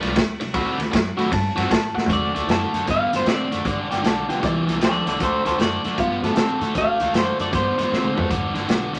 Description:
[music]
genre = electric blues shuffle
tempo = 154 BPM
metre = 4/4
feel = swing 65% on 8ths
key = D mixolydian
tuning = A4 = 439 Hz
[part]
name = biting overdriven guitar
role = riff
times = 0.0-9.0 s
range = G2 to B4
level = -27 LUFS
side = equal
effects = none
[part]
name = upright bass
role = bass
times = 0.0-9.0 s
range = F#1 to A2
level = -33 LUFS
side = equal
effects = none
[part]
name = raw garage drum kit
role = drums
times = 0.0-9.0 s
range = hi-hat, kick drum, ride cymbal, snare drum, toms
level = -26 LUFS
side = equal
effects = none
[part]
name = reed electric piano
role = accompaniment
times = 0.6-8.9 s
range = G3 to B5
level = -30 LUFS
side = equal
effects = none
[part]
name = electric guitar through a small old amp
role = melody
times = 2.1-8.3 s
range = A4 to A5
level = -26 LUFS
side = equal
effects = spring reverb
[part]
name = clear upright piano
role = second line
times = 3.9-6.7 s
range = F4 to A5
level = -28 LUFS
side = equal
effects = none
[sound]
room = moderate studio reverb, RT60 0.5 s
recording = nothing above 10.8 kHz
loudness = -21 LUFS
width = mono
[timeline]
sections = 0.0-2.1 A section; 2.1-9.0 B section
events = drum fill 1.9, 7.9-8.3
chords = 0.0 G7; 0.5 D7; 3.6 G7; 5.2 D7; 8.3 G7

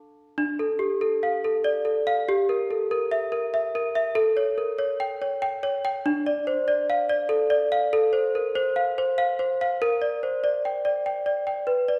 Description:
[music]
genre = classical, lullaby for celesta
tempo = 96 BPM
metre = 3/4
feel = straight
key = D minor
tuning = A4 = 440 Hz
[part]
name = worn celesta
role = solo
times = 0.0-12.0 s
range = D4 to D6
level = -25 LUFS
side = equal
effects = none
[sound]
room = wet recital hall reverb, RT60 1.6 s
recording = recorded in a church or concert hall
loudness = -25 LUFS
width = mono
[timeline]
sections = 0.4-12.0 A section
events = none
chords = 0.4 Dm; 2.3 Edim/G; 4.2 A7; 6.1 Dm; 7.9 F/A; 9.8 Gm/Bb

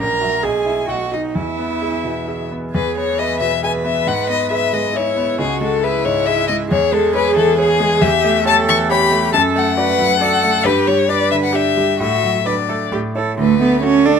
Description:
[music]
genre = quick classical-period movement for piano trio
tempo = 136 BPM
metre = 3/4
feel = rubato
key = E major, D major from 8.0 s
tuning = A4 = 441 Hz
[part]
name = rich violin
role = melody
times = 0.0-14.2 s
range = G#4 to C#6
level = -18 LUFS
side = left 9 dB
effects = none
[part]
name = warm cello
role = second line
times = 0.0-14.2 s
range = A3 to B4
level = -19 LUFS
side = right 6 dB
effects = none
[part]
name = bright concert grand piano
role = accompaniment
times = 0.0-14.2 s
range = A#1 to E5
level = -20 LUFS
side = equal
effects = none
[sound]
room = light reverb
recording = close, detailed microphones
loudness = -14 LUFS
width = side -7 dB against mid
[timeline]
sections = 0.0-2.7 A section; 2.7-13.4 A section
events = none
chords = 0.0 F#7/A#; 0.4 E/B; 0.9 B; 1.4 E; 4.1 E/G#; 5.4 C#m; 6.7 C#m/E; 8.0 A7/E; 9.3 D/F#; 10.7 G; 12.0 D/A; 12.9 A; 13.4 D

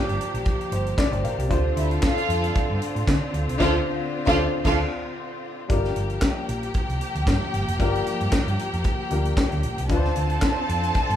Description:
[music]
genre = disco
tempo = 114 BPM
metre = 4/4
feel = swing 56% on 16ths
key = G minor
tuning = A4 = 437 Hz
[part]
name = warm grand piano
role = accompaniment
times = 0.0-11.2 s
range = D3 to F5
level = -29 LUFS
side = left 3 dB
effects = none
[part]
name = bright studio string section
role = sustained chords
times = 0.0-11.2 s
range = D3 to G4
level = -32 LUFS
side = left 1 dB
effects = none
[part]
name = clear horn section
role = stabs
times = 0.0-4.8 s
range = Bb3 to A4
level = -30 LUFS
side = right 2 dB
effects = none
[part]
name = hollow-body short-scale fingered electric bass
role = bass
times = 0.1-11.2 s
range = F1 to D3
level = -26 LUFS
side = equal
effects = none
[part]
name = tight funk drum kit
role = drums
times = 0.1-11.2 s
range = crash cymbal, handclaps, hi-hat, kick drum, snare drum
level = -25 LUFS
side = equal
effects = none
[part]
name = rich studio violin section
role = second line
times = 1.8-11.2 s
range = E4 to A5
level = -28 LUFS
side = equal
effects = none
[sound]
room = moderate large studio reverb, RT60 0.9 s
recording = band playing live in one room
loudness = -21 LUFS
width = side -10 dB against mid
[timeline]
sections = 0.0-5.7 A section; 5.7-11.2 B section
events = grand piano fill 0.5-1.5; band accent 3.6-5.7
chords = 0.0 Gm7; 1.5 Dm7; 5.7 Gm7; 9.9 Dm7

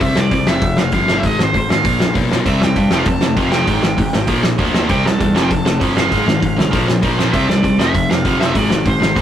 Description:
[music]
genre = punk rock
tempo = 197 BPM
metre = 4/4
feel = straight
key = unclear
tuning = A4 = 445 Hz
[part]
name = cranked stack guitar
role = melody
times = 0.0-9.2 s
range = C5 to A5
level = -21 LUFS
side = right 3 dB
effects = overdrive
[part]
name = sludgy distorted guitar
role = riff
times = 0.0-9.2 s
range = F2 to C4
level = -18 LUFS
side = left 4 dB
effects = overdrive
[part]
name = modern bright picked electric bass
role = bass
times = 0.0-9.2 s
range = F1 to G2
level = -21 LUFS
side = right 1 dB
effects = none
[part]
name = loose indie drum kit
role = drums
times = 0.0-9.2 s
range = hi-hat, kick drum, snare drum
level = -18 LUFS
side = right 1 dB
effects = none
[part]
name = tight distorted guitar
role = riff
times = 2.5-9.2 s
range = F2 to C4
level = -21 LUFS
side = right 5 dB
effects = distortion
[sound]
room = moderate studio ambience, RT60 0.5 s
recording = rough rehearsal-room recording, tube saturation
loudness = -13 LUFS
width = side -10 dB against mid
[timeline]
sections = 0.0-9.2 A section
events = none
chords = 0.0 C5; 0.5 F5; 1.2 Ab5; 1.8 Bb5; 2.5 C5; 2.9 F; 3.7 Ab5; 4.3 Bb; 4.9 C; 5.4 F; 6.1 Ab; 6.7 Bb5; 7.3 C5; 7.8 F5; 8.6 Ab

